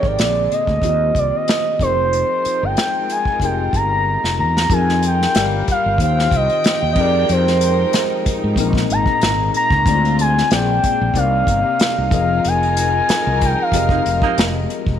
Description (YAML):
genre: R&B, neo-soul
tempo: 93 BPM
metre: 4/4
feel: swing 54% on 16ths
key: F dorian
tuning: A4 = 440 Hz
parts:
  - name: gliding portamento lead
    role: melody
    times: 0.0-14.7 s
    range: C5 to Bb5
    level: -18 LUFS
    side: right 1 dB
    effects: chorus, slapback echo
  - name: tine electric piano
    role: accompaniment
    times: 0.0-15.0 s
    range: Bb2 to F5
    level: -24 LUFS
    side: left 11 dB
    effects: medium stereo tremolo
  - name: warm chamber string section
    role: sustained chords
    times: 0.0-15.0 s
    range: C3 to G5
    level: -27 LUFS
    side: left 1 dB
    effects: none
  - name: mellow fretless electric bass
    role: bass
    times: 0.0-15.0 s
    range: E1 to Ab2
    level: -20 LUFS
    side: equal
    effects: tube saturation
  - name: unplugged drum kit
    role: drums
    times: 0.0-15.0 s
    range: crash cymbal, hi-hat, kick drum, snare drum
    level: -20 LUFS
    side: equal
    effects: none
  - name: mellow horn section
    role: stabs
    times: 13.9-14.4 s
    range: C3 to Eb4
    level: -25 LUFS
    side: right 12 dB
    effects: slapback echo
room: light reverb, studio reverb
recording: 1960s-style stereo with parts hard left and right, faint mains hum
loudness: -14 LUFS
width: side -9 dB against mid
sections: 0.0-4.7 A section; 4.7-15.0 B section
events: drum fill 4.1-4.7; band accent 12.4-15.0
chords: 0.2 Bb9; 0.8 Eb69; 1.8 Fm11; 5.3 Gm7; 6.0 Eb69; 7.0 Fm11; 8.6 Bb7sus4; 9.9 Dm7b5; 10.5 Bb9; 11.2 Cm7; 12.1 Fm7; 13.7 Fm11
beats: 0.18 0.83 1.47 | 2.12 2.76 3.41 4.05 | 4.70 5.34 5.99 6.63 | 7.28 7.92 8.57 9.21 | 9.86 10.51 11.15 11.79 | 12.44 13.09 13.73 14.38